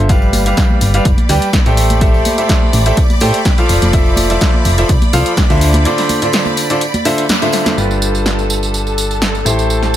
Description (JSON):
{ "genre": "piano house", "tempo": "125 BPM", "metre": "4/4", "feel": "swing 53% on 16ths", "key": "G mixolydian", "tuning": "A4 = 440 Hz", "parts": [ { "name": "bright concert grand piano", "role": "riff", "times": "0.0-10.0 s", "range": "D3 to G5", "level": "-16 LUFS", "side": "equal", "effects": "sidechain pumping, low-pass filter, dub echo" }, { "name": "solid FM bass", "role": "bass", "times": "0.0-10.0 s", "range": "F1 to A2", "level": "-15 LUFS", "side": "equal", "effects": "sidechain pumping" }, { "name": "string machine, violins", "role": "sustained chords", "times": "0.1-10.0 s", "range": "A4 to B5", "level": "-21 LUFS", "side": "equal", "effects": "ensemble chorus, sidechain pumping" }, { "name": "electronic kick drum", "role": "drums", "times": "0.1-5.5 s", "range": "none", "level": "-13 LUFS", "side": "equal", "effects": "none" }, { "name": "punchy analog drum machine", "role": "drums", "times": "0.1-10.0 s", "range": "hi-hat, snare drum, tambourine", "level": "-18 LUFS", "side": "equal", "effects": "none" }, { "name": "tambourine and congas", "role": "percussion", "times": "0.1-7.8 s", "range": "none", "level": "-23 LUFS", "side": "right 1 dB", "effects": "none" } ], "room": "light reverb, digital ambience", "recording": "none", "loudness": "-10 LUFS", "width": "side -12 dB against mid", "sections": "0.0-7.8 A section; 7.8-10.0 B section", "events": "break 5.9-7.8; band accent 7.3; drum fill 7.5; filter sweep on grand piano 7.8-10.0", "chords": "0.1 G7; 1.8 Am7; 3.7 Fmaj7; 5.6 Dm7; 7.8 G7; 9.5 Am7" }